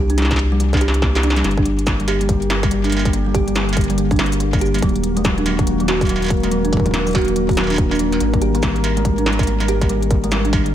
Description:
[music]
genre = IDM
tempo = 142 BPM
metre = 4/4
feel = swing 62% on 16ths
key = G phrygian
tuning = A4 = 443 Hz
[part]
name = kalimba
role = arpeggios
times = 0.0-10.6 s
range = Gb3 to G4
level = -20 LUFS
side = equal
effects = ping-pong delay
[part]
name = round analog bass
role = bass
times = 0.0-10.7 s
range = Eb1 to C2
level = -21 LUFS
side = equal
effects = tube saturation
[part]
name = industrial drum kit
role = drums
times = 0.1-10.7 s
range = hi-hat, shaker, snare drum, struck metal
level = -23 LUFS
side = equal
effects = ping-pong delay
[part]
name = electronic kick drum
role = drums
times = 0.3-10.6 s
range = none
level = -20 LUFS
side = equal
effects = distortion
[part]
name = warbly tape-like pad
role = sustained chords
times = 1.8-10.7 s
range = D3 to Bb4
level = -23 LUFS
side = left 1 dB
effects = chorus, built-in reverb
[sound]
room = light reverb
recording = none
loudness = -15 LUFS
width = side -11 dB against mid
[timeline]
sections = 0.0-10.7 A section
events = drum fill 0.6-1.4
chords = 0.0 C5; 1.4 Gm; 4.8 Ebm; 8.2 Absus2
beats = 0.18 0.60 1.02 | 1.44 1.87 2.29 2.71 | 3.13 3.56 3.98 4.40 | 4.83 5.25 5.67 6.09 | 6.51 6.94 7.36 7.78 | 8.21 8.63 9.05 9.47 | 9.89 10.32 10.74

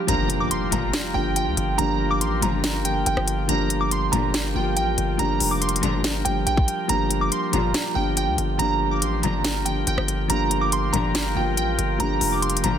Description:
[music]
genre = hip hop, trap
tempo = 141 BPM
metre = 4/4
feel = half-time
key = G minor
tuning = A4 = 439 Hz
[part]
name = glassy digital keys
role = melody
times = 0.0-12.8 s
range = G5 to D6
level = -26 LUFS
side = right 3 dB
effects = chorus, low-pass filter, tape echo
[part]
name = dark grand piano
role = accompaniment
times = 0.0-12.8 s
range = F3 to F4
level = -26 LUFS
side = left 1 dB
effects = low-pass filter
[part]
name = accordion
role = sustained chords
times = 0.0-12.8 s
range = F4 to G5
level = -33 LUFS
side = left 3 dB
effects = stereo widening
[part]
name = distorted 808-style bass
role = bass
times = 0.1-12.8 s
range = F1 to D2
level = -26 LUFS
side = equal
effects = distortion
[part]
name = trap drum kit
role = drums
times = 0.1-12.7 s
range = hi-hat, kick drum, rim click, snare drum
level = -25 LUFS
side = left 1 dB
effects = none
[part]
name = impact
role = sound effects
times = 0.1-1.8 s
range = none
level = -32 LUFS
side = equal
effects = none
[part]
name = dark chamber string section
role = stabs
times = 0.7-12.8 s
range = Bb2 to F3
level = -29 LUFS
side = left 6 dB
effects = none
[sound]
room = small room ambience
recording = dense, heavily limited modern master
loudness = -20 LUFS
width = side -9 dB against mid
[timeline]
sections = 0.1-12.8 A section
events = impact 0.1-1.8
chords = 0.1 Gm7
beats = | 0.08 0.51 0.94 1.36 | 1.79 2.21 2.64 3.06 | 3.49 3.91 4.34 4.76 | 5.19 5.62 6.04 6.47 | 6.89 7.32 7.74 8.17 | 8.60 9.02 9.45 9.87 | 10.30 10.72 11.15 11.57 | 12.00 12.43

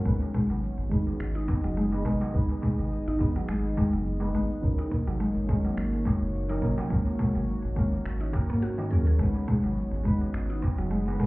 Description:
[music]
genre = organic downtempo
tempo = 105 BPM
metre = 4/4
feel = swing 55% on 16ths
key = G# minor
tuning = A4 = 438 Hz
[part]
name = deep mellow chord stab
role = accompaniment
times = 0.0-11.3 s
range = F#3 to B4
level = -35 LUFS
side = right 1 dB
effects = chorus, cassette tape, sidechain pumping, ping-pong delay
[part]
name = warm analog pad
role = sustained chords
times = 0.0-11.3 s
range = A#3 to D#5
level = -36 LUFS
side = equal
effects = chorus, sidechain pumping
[part]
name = mallet-like synth pluck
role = arpeggios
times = 0.1-11.3 s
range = D#3 to G#4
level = -30 LUFS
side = left 1 dB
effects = chorus, ping-pong delay
[part]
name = round analog bass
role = bass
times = 0.1-11.3 s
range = F#1 to G#2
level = -29 LUFS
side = equal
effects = none
[part]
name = electronic cabasa and finger snaps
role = drums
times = 0.1-11.3 s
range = none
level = -48 LUFS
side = equal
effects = small room reverb
[part]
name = electronic kick drum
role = drums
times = 0.1-10.8 s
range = none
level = -28 LUFS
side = equal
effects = small room reverb
[part]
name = darbuka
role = percussion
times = 0.2-11.3 s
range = none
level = -35 LUFS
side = equal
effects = none
[sound]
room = light reverb, digital ambience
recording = heard muffled through a wall, club reverb, EQ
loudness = -25 LUFS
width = side -21 dB against mid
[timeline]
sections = 0.0-11.3 A section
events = none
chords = 0.1 G#m; 4.6 D#m7/G#; 6.9 F#/G#; 9.2 G#m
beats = | 0.06 0.63 1.20 1.77 | 2.34 2.92 3.49 4.06 | 4.63 5.20 5.77 6.34 | 6.92 7.49 8.06 8.63 | 9.20 9.77 10.34 10.92

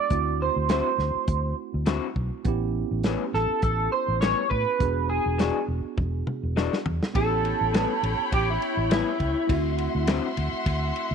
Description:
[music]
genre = straight-eighth soul blues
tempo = 102 BPM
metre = 4/4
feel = swing 54% on 16ths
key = A mixolydian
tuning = A4 = 440 Hz
[part]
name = electric guitar through a small old amp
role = melody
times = 0.0-10.1 s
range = E4 to D5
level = -26 LUFS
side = right 2 dB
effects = analog chorus
[part]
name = tine electric piano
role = accompaniment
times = 0.0-11.1 s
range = A3 to G#4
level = -33 LUFS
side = right 15 dB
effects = auto-pan
[part]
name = vintage muted fingered electric bass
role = bass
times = 0.1-11.1 s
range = E1 to A2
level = -28 LUFS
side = equal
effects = none
[part]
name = warm soul drum kit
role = drums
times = 0.1-11.1 s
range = hi-hat, kick drum, ride cymbal, snare drum, toms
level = -27 LUFS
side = equal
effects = none
[part]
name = electric guitar through a small old amp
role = stabs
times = 0.7-10.3 s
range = A2 to F#4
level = -31 LUFS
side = left 12 dB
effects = none
[part]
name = muted studio string section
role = sustained chords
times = 7.2-11.1 s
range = C#5 to C6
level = -32 LUFS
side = left 3 dB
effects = none
[sound]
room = light reverb, small room ambience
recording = 1960s-style stereo with parts hard left and right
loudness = -23 LUFS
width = side -6 dB against mid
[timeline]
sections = 0.0-7.2 A section; 7.2-11.1 B section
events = drum fill 6.0-7.2; clean electric guitar solo 7.2-11.1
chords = 0.1 D9; 2.5 A9; 4.8 E9; 7.2 A9; 9.5 D9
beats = | 0.11 0.70 1.28 1.87 | 2.46 3.05 3.63 4.22 | 4.81 5.39 5.98 6.57 | 7.15 7.74 8.32 8.91 | 9.49 10.08 10.66

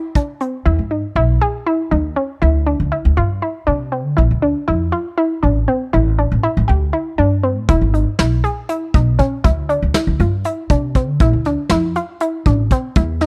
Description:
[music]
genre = progressive instrumental, band music in an uneven meter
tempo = 239 BPM (eighths)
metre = 7/8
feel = straight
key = unclear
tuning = A4 = 435 Hz
[part]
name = analog pluck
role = arpeggios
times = 0.0-13.3 s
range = C4 to G#4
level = -21 LUFS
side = equal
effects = chorus
[part]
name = soft brush drum kit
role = drums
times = 0.1-0.5, 7.7-13.3 s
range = hi-hat, kick drum, snare drum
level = -18 LUFS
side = equal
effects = none
[part]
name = upright bass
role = bass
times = 0.7-13.3 s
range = E1 to D3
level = -19 LUFS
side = equal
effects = none
[sound]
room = small room ambience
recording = dry, close 1970s-style studio recording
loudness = -17 LUFS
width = mono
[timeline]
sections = 0.7-13.3 A section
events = none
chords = 0.0 N.C.; 0.7 Emaj7; 2.4 Dm7; 4.2 Bbmaj7 (rootless); 5.9 Am7; 7.7 Emaj7; 9.4 Dm7; 11.2 Bbmaj7 (rootless)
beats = 0.16 0.41 | 0.66 0.91 1.16 1.41 1.66 1.91 2.17 | 2.42 2.67 2.92 3.17 3.42 3.67 3.92 | 4.17 4.42 4.67 4.93 5.18 5.43 5.68 | 5.93 6.18 6.43 6.68 6.93 7.19 7.44 | 7.69 7.94 8.19 8.44 8.69 8.95 9.20 | 9.45 9.70 9.95 10.20 10.45 10.70 10.95 | 11.21 11.46 11.71 11.96 12.21 12.46 12.71 | 12.96 13.21

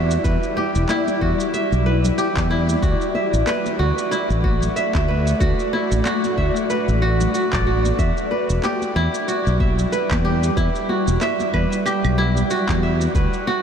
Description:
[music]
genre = organic downtempo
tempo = 93 BPM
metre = 4/4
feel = swing 57% on 16ths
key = E minor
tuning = A4 = 438 Hz
[part]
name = granular cloud pad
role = sustained chords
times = 0.0-13.6 s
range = G3 to F#5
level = -24 LUFS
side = left 1 dB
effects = built-in reverb, lush chorus, sidechain pumping, shimmer reverb
[part]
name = kora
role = arpeggios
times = 0.0-13.6 s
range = E4 to E5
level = -23 LUFS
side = right 2 dB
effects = ping-pong delay, shimmer reverb
[part]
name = mellow fretless electric bass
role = bass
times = 0.0-13.3 s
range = E1 to E2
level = -20 LUFS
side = equal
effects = sidechain pumping
[part]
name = electronic shaker, handclaps and claves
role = drums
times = 0.1-13.4 s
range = none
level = -32 LUFS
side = right 2 dB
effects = none
[part]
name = electronic kick drum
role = drums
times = 0.2-13.3 s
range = none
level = -23 LUFS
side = equal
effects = none
[part]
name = congas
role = percussion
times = 0.6-13.6 s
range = none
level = -32 LUFS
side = left 2 dB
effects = none
[sound]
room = wet huge ambient reverb, RT60 7.7 s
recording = dreamy mix soaked in reverb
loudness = -17 LUFS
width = side -8 dB against mid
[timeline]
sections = 0.0-13.6 A section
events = none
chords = 0.0 Em7; 2.8 D; 8.0 Em7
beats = | 0.25 0.89 1.54 2.18 | 2.83 3.47 4.12 4.76 | 5.41 6.05 6.70 7.34 | 7.99 8.63 9.28 9.92 | 10.57 11.21 11.86 12.51 | 13.15

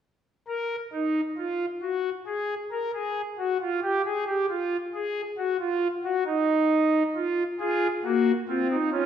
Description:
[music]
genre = classical, baroque-style 4-part fugue for pipe organ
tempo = 68 BPM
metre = 4/4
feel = straight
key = unclear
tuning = A4 = 440 Hz
[part]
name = pipe organ, foundations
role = solo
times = 0.5-9.1 s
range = Bb3 to Bb4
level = -24 LUFS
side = equal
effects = none
[sound]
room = wet recital hall reverb, RT60 1.3 s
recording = dark, warm production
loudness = -24 LUFS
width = side -9 dB against mid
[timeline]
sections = 0.0-9.1 A section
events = none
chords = 0.0 N.C.; 7.2 Bb5/F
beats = | 0.03 0.93 1.82 2.71 | 3.60 4.49 5.38 6.27 | 7.16 8.04 8.92

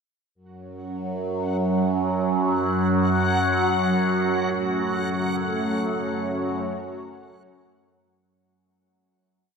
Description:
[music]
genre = dark ambient drone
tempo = free time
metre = none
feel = none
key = F# minor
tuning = A4 = 440 Hz
[part]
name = overtone-sweeping drone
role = drone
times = 0.8-8.3 s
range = F#2 to F#3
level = -22 LUFS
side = right 1 dB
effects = chorus, built-in reverb, phaser
[part]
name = backwards swelling texture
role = texture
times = 1.6-8.3 s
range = F#4 to F#5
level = -31 LUFS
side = left 2 dB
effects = built-in reverb
[part]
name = sweeping resonant pad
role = sustained chords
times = 4.3-8.2 s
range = A3 to C#5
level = -29 LUFS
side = equal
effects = chorus
[sound]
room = wet huge ambient reverb, RT60 8.4 s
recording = dark, warm production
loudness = -21 LUFS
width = side -5 dB against mid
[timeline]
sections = 0.4-8.2 A section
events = fade-out 4.3-8.2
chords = 0.4 F#m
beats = free time

